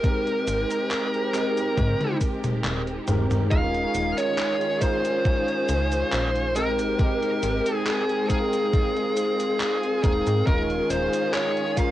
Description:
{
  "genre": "vaporwave",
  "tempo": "69 BPM",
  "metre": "4/4",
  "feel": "straight",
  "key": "Ab major",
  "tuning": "A4 = 442 Hz",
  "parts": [
    { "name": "high-gain lead guitar", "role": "melody", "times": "0.0-11.9 s", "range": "Ab4 to F5", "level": "-25 LUFS", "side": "equal", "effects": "distortion, vintage 12-bit sampler grit, cassette tape, tape echo" },
    { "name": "tine electric piano", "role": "accompaniment", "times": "0.0-11.9 s", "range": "Ab3 to G5", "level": "-28 LUFS", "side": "equal", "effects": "medium stereo tremolo, ensemble chorus, vintage 12-bit sampler grit" },
    { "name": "rich studio string section", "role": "sustained chords", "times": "0.0-11.9 s", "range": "Eb3 to Ab4", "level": "-33 LUFS", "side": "right 1 dB", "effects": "none" },
    { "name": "electronic kick drum", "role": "drums", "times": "0.0-11.9 s", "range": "none", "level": "-23 LUFS", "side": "equal", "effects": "studio reverb, cassette tape" },
    { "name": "gated 80s digital drum machine", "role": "drums", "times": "0.0-11.9 s", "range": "cabasa, handclaps, hi-hat, toms", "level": "-28 LUFS", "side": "equal", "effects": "gated reverb, studio reverb, cassette tape" },
    { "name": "slap-like FM bass", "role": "bass", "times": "0.5-11.1 s", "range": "Eb1 to Ab2", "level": "-28 LUFS", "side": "equal", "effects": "transformer saturation" }
  ],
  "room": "light reverb",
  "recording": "home recording on cassette, nothing above 10.9 kHz",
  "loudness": "-21 LUFS",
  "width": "side -14 dB against mid",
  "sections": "0.0-3.5 A section; 3.5-11.9 B section",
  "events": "drum fill 1.8-3.5",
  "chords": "0.0 Abmaj9; 3.5 Eb9sus4; 6.6 Abmaj9; 10.5 Eb9sus4",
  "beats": "| 0.04 0.91 1.78 2.65 | 3.52 4.38 5.25 6.12 | 6.99 7.86 8.73 9.60 | 10.47 11.34"
}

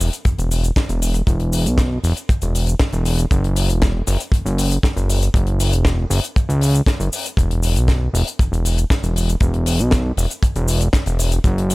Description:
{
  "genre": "nu-disco, nu disco",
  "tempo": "118 BPM",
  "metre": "4/4",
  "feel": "straight",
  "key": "unclear",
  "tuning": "A4 = 444 Hz",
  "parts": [
    { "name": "fat analog bass", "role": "bass", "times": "0.0-11.7 s", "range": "E1 to C#2", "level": "-17 LUFS", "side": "equal", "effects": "tube saturation, sidechain pumping" },
    { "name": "tight funk drum kit", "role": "drums", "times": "0.0-11.7 s", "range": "cabasa, hi-hat, snare drum", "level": "-24 LUFS", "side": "left 2 dB", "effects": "none" },
    { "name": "kick drum", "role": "drums", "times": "0.3-11.5 s", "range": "none", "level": "-18 LUFS", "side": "equal", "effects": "none" }
  ],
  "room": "little or no reverb",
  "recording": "dry, gritty hardware recording",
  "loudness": "-16 LUFS",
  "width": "side -22 dB against mid",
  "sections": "0.0-11.7 A section",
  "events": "none",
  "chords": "none",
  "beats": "0.26 0.77 | 1.27 1.78 2.29 2.80 | 3.31 3.82 4.33 4.83 | 5.34 5.85 6.36 6.87 | 7.38 7.88 8.39 8.90 | 9.41 9.92 10.43 10.94 | 11.44"
}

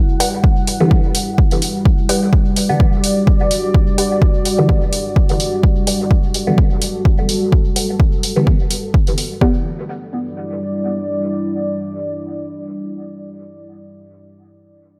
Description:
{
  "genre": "dub techno",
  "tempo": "127 BPM",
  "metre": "4/4",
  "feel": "swing 55% on 16ths",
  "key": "E minor",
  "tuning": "A4 = 441 Hz",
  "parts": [
    { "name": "deep dark ambient pad", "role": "sustained chords", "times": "0.0-13.8 s", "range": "G3 to F#5", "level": "-23 LUFS", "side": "equal", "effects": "chorus, built-in reverb, sidechain pumping" },
    { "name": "warbly dusty pluck", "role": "riff", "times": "0.2-13.8 s", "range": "G4 to F#5", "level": "-27 LUFS", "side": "equal", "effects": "analog chorus, cassette tape, sidechain pumping, dub echo" },
    { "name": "electronic hi-hat", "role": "drums", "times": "0.2-9.3 s", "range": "none", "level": "-23 LUFS", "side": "equal", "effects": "overdrive" },
    { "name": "electronic kick drum", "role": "drums", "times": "0.4-9.5 s", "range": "none", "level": "-16 LUFS", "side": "equal", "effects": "overdrive" },
    { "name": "filtered dub chord stab", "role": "stabs", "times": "0.8-13.8 s", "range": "D3 to B3", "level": "-23 LUFS", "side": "equal", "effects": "phaser, sidechain pumping, dub echo" }
  ],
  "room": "light reverb, digital ambience",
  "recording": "none",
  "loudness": "-16 LUFS",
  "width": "mono",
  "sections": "0.0-9.4 A section; 9.4-13.2 B section",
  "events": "none",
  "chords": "0.0 Em7",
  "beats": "0.44 0.91 1.38 | 1.85 2.33 2.80 3.27 | 3.74 4.22 4.69 5.16 | 5.63 6.11 6.58 7.05 | 7.52 8.00 8.47 8.94 | 9.41 9.89 10.36 10.83 | 11.30 11.78 12.25 12.72"
}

